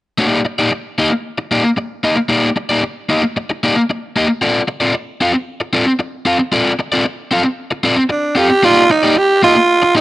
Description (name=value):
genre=funk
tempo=114 BPM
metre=4/4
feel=straight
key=unclear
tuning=A4 = 442 Hz
part: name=crunchy overdriven guitar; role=accompaniment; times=0.2-10.0 s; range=Bb3 to F5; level=-14 LUFS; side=left 1 dB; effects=plate reverb
part: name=growling tenor saxophone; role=melody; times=8.1-10.0 s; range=D4 to G4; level=-10 LUFS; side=right 2 dB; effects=plate reverb
room=moderate small room reverb, RT60 0.5 s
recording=nothing above 10.8 kHz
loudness=-13 LUFS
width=side -16 dB against mid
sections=0.2-8.6 A section; 8.6-10.0 B section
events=none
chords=0.2 Ebmaj7/Bb; 4.4 Dm7; 8.6 Ebmaj9/Bb